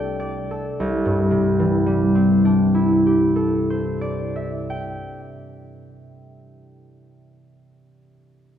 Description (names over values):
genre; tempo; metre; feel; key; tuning
classical, solo harp piece; 50 BPM; 4/4; rubato; C major; A4 = 435 Hz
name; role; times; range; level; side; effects
concert harp; solo; 0.0-7.1 s; C2 to A5; -18 LUFS; equal; none
room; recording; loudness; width
wet concert hall reverb, RT60 2.4 s; heard from further back in the room; -17 LUFS; side -9 dB against mid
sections
0.8-5.6 A section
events
none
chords
0.0 C69